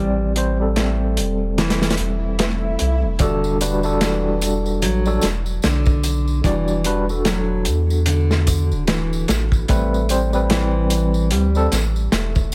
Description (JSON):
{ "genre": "trip hop", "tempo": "74 BPM", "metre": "4/4", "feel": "swing 58% on 16ths", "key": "E minor", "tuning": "A4 = 440 Hz", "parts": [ { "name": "overdriven tine electric piano", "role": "accompaniment", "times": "0.0-11.8 s", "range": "G3 to D5", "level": "-25 LUFS", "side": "equal", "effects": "fast tremolo, vintage 12-bit sampler grit, tape echo" }, { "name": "nylon-string guitar", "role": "arpeggios", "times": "0.0-12.5 s", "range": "D3 to A3", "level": "-28 LUFS", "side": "equal", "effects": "tape echo" }, { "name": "soft dub sub bass", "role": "bass", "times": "0.0-12.5 s", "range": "D1 to E2", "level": "-23 LUFS", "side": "equal", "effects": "none" }, { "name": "crunchy breakbeat drum kit", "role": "drums", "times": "0.4-12.5 s", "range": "hi-hat, kick drum, snare drum", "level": "-24 LUFS", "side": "equal", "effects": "none" }, { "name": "swell", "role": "sound effects", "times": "2.0-3.2 s", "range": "none", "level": "-33 LUFS", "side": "equal", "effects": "none" }, { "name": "tambourine", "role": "percussion", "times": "3.2-12.5 s", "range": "none", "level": "-36 LUFS", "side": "equal", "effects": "none" } ], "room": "studio ambience", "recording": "none", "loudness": "-19 LUFS", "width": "mono", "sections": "0.0-12.5 A section", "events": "kick drops out 1.6-3.2; swell 2.0-3.2", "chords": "0.0 Am7; 3.2 Em11; 9.7 Am9", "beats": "0.77 1.58 2.39 | 3.20 4.01 4.82 5.63 | 6.45 7.26 8.07 8.88 | 9.69 10.50 11.31 12.12" }